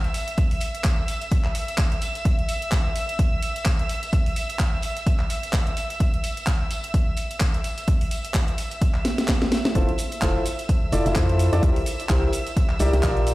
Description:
piano house; 128 BPM; 4/4; swing 57% on 16ths; F major; A4 = 444 Hz
warm chamber violin section; sustained chords; 0.0-13.3 s; E5 to E6; -31 LUFS; right 1 dB; vintage 12-bit sampler grit, sidechain pumping
house drum kit; drums; 0.0-13.3 s; handclaps, hi-hat, shaker, snare drum; -29 LUFS; equal
tambourine; percussion; 0.1-13.3 s; -40 LUFS; left 2 dB
electronic kick drum; drums; 0.4-13.1 s; -22 LUFS; equal; overdrive
clear upright piano; riff; 9.8-13.3 s; E4 to E5; -25 LUFS; equal; sidechain pumping, dub echo
organ-like FM bass; bass; 9.8-13.3 s; F1 to F2; -21 LUFS; equal; sidechain pumping
studio reverb; played on a big sound system in a bare room, stone room reverb; -20 LUFS; side -18 dB against mid
0.0-13.3 A section
drum fill 9.1-9.8
0.0 N.C.; 9.8 Fmaj7; 11.6 Bb6
| 0.38 0.85 1.32 1.78 | 2.25 2.72 3.19 3.66 | 4.13 4.60 5.07 5.54 | 6.00 6.47 6.94 7.41 | 7.88 8.35 8.82 9.29 | 9.75 10.22 10.69 11.16 | 11.63 12.10 12.57 13.04

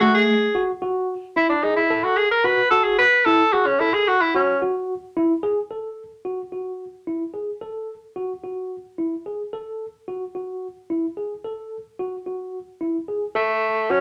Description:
progressive instrumental, progressive; 220 BPM (eighths); 7/8; straight; F# minor; A4 = 440 Hz
clear tenor saxophone; melody; 0.0-4.6, 13.4-14.0 s; A3 to B4; -19 LUFS; equal
tine electric piano; arpeggios; 0.0-14.0 s; A3 to A4; -27 LUFS; equal
wet club reverb, RT60 0.6 s; tape saturation; -22 LUFS; mono
0.0-5.7 A section; 5.7-13.4 B section
tenor saxophone solo 0.0-5.7
0.0 F#m9
| 0.01 0.28 0.55 0.82 1.09 1.37 1.64 | 1.91 2.18 2.45 2.72 2.99 3.26 3.54 | 3.81 4.08 4.35 4.62 4.89 5.17 5.44 | 5.71 5.98 6.25 6.53 6.80 7.07 7.34 | 7.62 7.89 8.16 8.44 8.71 8.98 9.26 | 9.53 9.80 10.08 10.35 10.62 10.90 11.17 | 11.44 11.72 11.99 12.26 12.54 12.81 13.08 | 13.36 13.63 13.90

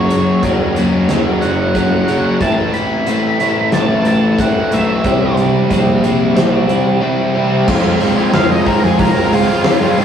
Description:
quiet-loud alternative rock; 91 BPM; 4/4; straight; A4 = 439 Hz
octave-fuzz lead guitar; melody; 0.0-10.0 s; F4 to B5; -20 LUFS; equal; distortion, slapback echo
twelve-string electric guitar; arpeggios; 0.0-7.7 s; A2 to Gb4; -20 LUFS; equal
biting overdriven guitar; riff; 0.0-10.0 s; Gb2 to F4; -15 LUFS; equal
fuzz picked electric bass; bass; 0.0-10.0 s; Gb1 to F3; -19 LUFS; equal; overdrive
big rock drum kit; drums; 0.1-10.0 s; crash cymbal, hi-hat, kick drum, snare drum; -18 LUFS; equal
tonewheel organ; sustained chords; 7.7-10.0 s; F4 to Ab5; -24 LUFS; equal; slow rotary speaker, overdrive, chorus vibrato
light reverb; rough rehearsal-room recording, warm saturation; -12 LUFS; side -8 dB against mid
0.0-7.7 A section; 7.7-10.0 B section
half time 0.0-7.7; lead electric guitar solo 7.7-10.0
0.0 Gb; 2.4 Am; 5.0 C; 7.7 Fm
0.43 1.09 1.75 | 2.41 3.07 3.73 4.39 | 5.04 5.70 6.36 7.02 | 7.68 8.34 8.99 9.65

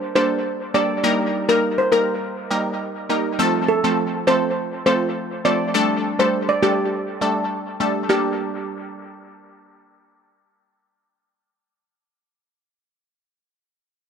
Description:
dancehall; 102 BPM; 4/4; straight; G minor; A4 = 440 Hz
steel pan; melody; 0.2-9.8 s; G4 to D5; -21 LUFS; equal; dub echo
analog pluck; accompaniment; 0.2-11.9 s; F3 to Bb4; -21 LUFS; equal; chorus, phaser, dub echo
light reverb, small room ambience; echo-heavy mix; -18 LUFS; side -7 dB against mid
0.0-8.1 A section; 8.1-10.4 B section
0.0 Gmadd9; 1.0 Eb; 3.4 F; 5.7 Dsus4; 8.1 Gmadd9
0.45 | 1.04 1.63 2.21 2.80 | 3.39 3.98 4.57 5.16 | 5.74 6.33 6.92 7.51 | 8.10 8.69 9.27 9.86

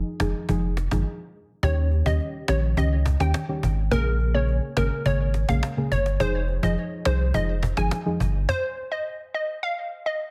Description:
dancehall; 105 BPM; 4/4; straight; A4 = 438 Hz
deep mellow chord stab; accompaniment; 0.0-8.3 s; Db3 to Ab4; -30 LUFS; equal; chorus, phaser
warm sub bass; bass; 0.0-8.5 s; F1 to Eb2; -26 LUFS; equal
cajon; drums; 0.2-8.6 s; -31 LUFS; equal
glassy wavetable pluck; melody; 1.6-10.2 s; Bb4 to Ab5; -31 LUFS; equal; chorus, delay
light reverb; heavily compressed radio sound, multiband compression; -24 LUFS; mono
0.0-1.6 A section; 1.6-10.3 B section
break 1.1-1.6; stop 8.5-10.3
0.0 Fm7; 1.6 Eb7; 3.9 Bbm7; 6.2 Fm7
0.49 1.06 | 1.63 2.20 2.77 3.35 | 3.92 4.49 5.06 5.63 | 6.20 6.77 7.34 7.92 | 8.49 9.06 9.63

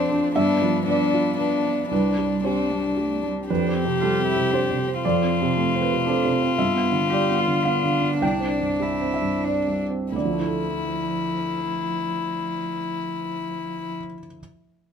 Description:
neoclassical piano and strings; 84-118 BPM; 3/4; rubato; D dorian; A4 = 437 Hz
warm violin; melody; 0.0-13.9 s; D4 to G4; -24 LUFS; left 5 dB
warm cello; second line; 0.0-13.9 s; F3 to G4; -30 LUFS; right 4 dB
felt-muted upright piano; accompaniment; 0.0-14.4 s; C2 to G5; -24 LUFS; right 3 dB
warm chamber string section; sustained chords; 0.0-3.5 s; F3 to C5; -33 LUFS; equal
light reverb; minimal, uncompressed stereo recording; -21 LUFS; side -7 dB against mid
0.0-3.5 A section; 3.5-10.1 B section; 10.1-14.4 C section
slowing down 5.8-10.1
0.4 G7; 1.9 Csus2; 3.5 Fadd9; 5.0 Dm7/F; 6.6 G7; 8.2 Csus2; 10.1 Dmadd9
| 0.36 0.87 1.39 | 1.91 2.44 2.97 | 3.49 4.01 4.53 | 5.04 5.55 6.07 | 6.58 7.11 7.65 | 8.22 8.81 9.45 | 10.14 10.84 11.54 | 12.25 12.95 13.66

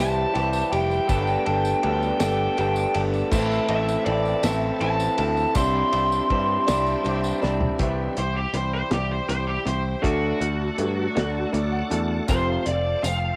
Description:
folk rock and heartland rock; 54 BPM (dotted quarters); 6/8; straight; C major; A4 = 440 Hz
bluesy overdriven lead guitar; melody; 0.0-13.4 s; F#4 to C6; -28 LUFS; equal; distortion
bright grand piano; accompaniment; 0.0-13.4 s; F4 to A5; -40 LUFS; equal
picked swing-style acoustic guitar; accompaniment; 0.0-13.4 s; F2 to D5; -35 LUFS; equal; cassette tape
bright tonewheel organ; sustained chords; 0.0-13.4 s; G3 to A4; -39 LUFS; equal
electric guitar through a small old amp; riff; 0.0-13.4 s; F2 to A4; -29 LUFS; equal; cassette tape
picked electric bass; bass; 0.0-13.3 s; F1 to G2; -29 LUFS; equal
tambourine; percussion; 0.3-7.5, 12.3-13.2 s; -42 LUFS; equal
cloth-damped thuddy drum kit; drums; 0.4-13.2 s; crash cymbal, hi-hat, kick drum, ride cymbal, snare drum, toms; -32 LUFS; equal; cassette tape
light reverb; home recording on cassette; -23 LUFS; mono
0.0-7.8 A section; 7.8-13.4 B section
drum fill 7.4-7.8; lead electric guitar solo 7.8-13.4; grand piano fill 11.2-12.3
0.0 C; 1.1 Gadd9; 3.3 Am; 5.6 Cadd9; 7.8 C; 10.0 D; 12.3 F
| 1.10 2.21 | 3.33 4.44 | 5.56 6.68 | 7.80 8.92 | 10.04 11.16 | 12.29

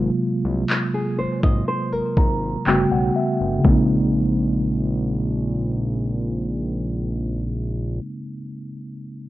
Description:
contemporary R&B; 61 BPM; 4/4; straight; Bb minor; A4 = 440 Hz
mellow tine electric piano; accompaniment; 0.0-9.3 s; C3 to Bb5; -22 LUFS; equal; medium stereo tremolo
fat analog bass; bass; 0.0-8.0 s; G1 to C2; -26 LUFS; equal
smooth R&B drum kit; drums; 0.7-3.9 s; handclaps, kick drum; -19 LUFS; equal
flamenco guitar; arpeggios; 0.9-2.6 s; Ab4 to Eb5; -27 LUFS; equal; tape echo
little or no reverb; rough home demo mix, low-pass filter; -19 LUFS; side -16 dB against mid
0.0-3.6 A section; 3.6-7.6 B section
filter sweep 0.0-3.6; tine electric piano fill 1.7-3.6
0.0 Ab13; 2.7 Gmaj9#11; 3.6 Bbm11
0.69 1.68 2.66 | 3.65 4.63 5.61 6.60

